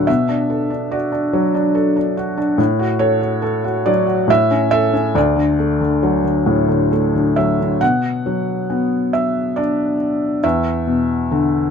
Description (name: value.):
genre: classical, lyrical solo piano.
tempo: 66-73 BPM.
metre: 3/4.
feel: rubato.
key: D major, B minor from 7.8 s.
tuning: A4 = 442 Hz.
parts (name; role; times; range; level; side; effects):
felt-muted upright piano; solo; 0.0-11.7 s; D2 to F#5; -15 LUFS; equal; none.
room: light reverb.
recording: close, detailed microphones.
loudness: -15 LUFS.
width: side -6 dB against mid.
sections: 0.0-7.8 A section; 7.8-11.7 B section.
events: none.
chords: 0.1 Bm7; 2.6 A6; 4.3 A; 5.2 D; 7.8 Bm; 10.4 E7(no3).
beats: | 0.08 0.92 1.75 | 2.58 3.43 4.29 | 5.16 6.03 6.93 | 7.82 8.70 9.57 | 10.44 11.31.